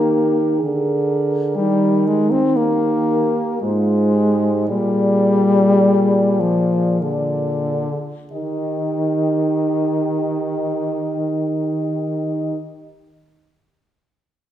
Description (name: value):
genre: classical, lyrical piece for horn quartet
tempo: 43-64 BPM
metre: 3/4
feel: rubato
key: Eb major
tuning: A4 = 440 Hz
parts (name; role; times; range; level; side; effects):
- mellow French horn; melody; 0.0-12.6 s; Bb4 to Eb5; -26 LUFS; left 6 dB; none
- mellow French horn; second line; 0.0-12.6 s; F4 to Ab4; -25 LUFS; right 5 dB; none
- warm French horn; accompaniment; 0.0-12.6 s; D3 to C4; -19 LUFS; left 2 dB; none
- mellow French horn; bass; 0.0-12.6 s; Ab2 to Eb3; -21 LUFS; right 3 dB; none
room: wet recital hall reverb, RT60 1.4 s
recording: none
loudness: -16 LUFS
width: side -11 dB against mid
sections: 0.0-8.3 A section; 8.3-12.2 B section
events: slowing down 0.1-8.3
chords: 0.0 Eb; 0.6 Bb7/D; 1.6 Eb; 3.6 Fm/Ab; 4.7 Bb7; 8.3 Eb